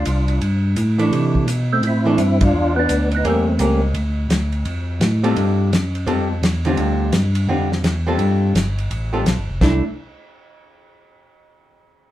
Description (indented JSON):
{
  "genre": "soul jazz organ trio",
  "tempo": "170 BPM",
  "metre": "4/4",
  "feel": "swing 64% on 8ths",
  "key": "C major",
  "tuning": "A4 = 440 Hz",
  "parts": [
    { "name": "percussive tonewheel organ", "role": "melody", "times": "0.0-3.8 s", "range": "A3 to F4", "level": "-20 LUFS", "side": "equal", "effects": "slow rotary speaker, chorus vibrato" },
    { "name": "tonewheel organ", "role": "bass", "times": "0.0-9.8 s", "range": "F1 to C3", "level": "-19 LUFS", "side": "equal", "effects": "slow rotary speaker" },
    { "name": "warm soul drum kit", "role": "drums", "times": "0.1-9.7 s", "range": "crash cymbal, hi-hat, kick drum, ride cymbal, snare drum", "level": "-23 LUFS", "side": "equal", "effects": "none" },
    { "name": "archtop guitar, miked and amplified", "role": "accompaniment", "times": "1.0-9.8 s", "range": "D3 to A4", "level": "-20 LUFS", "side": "equal", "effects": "none" }
  ],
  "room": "wet studio ambience, RT60 0.5 s",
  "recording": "heard from further back in the room",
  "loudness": "-16 LUFS",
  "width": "side -13 dB against mid",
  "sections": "0.0-4.0 A section; 4.0-9.6 B section; 9.6-11.0 C section",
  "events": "band accent 2.4",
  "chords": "0.4 Gsus2; 1.1 C69; 2.5 E5; 3.2 A7b9; 4.0 Dm; 5.4 G9sus4; 6.8 Dm11; 8.2 G9sus4; 9.6 C69"
}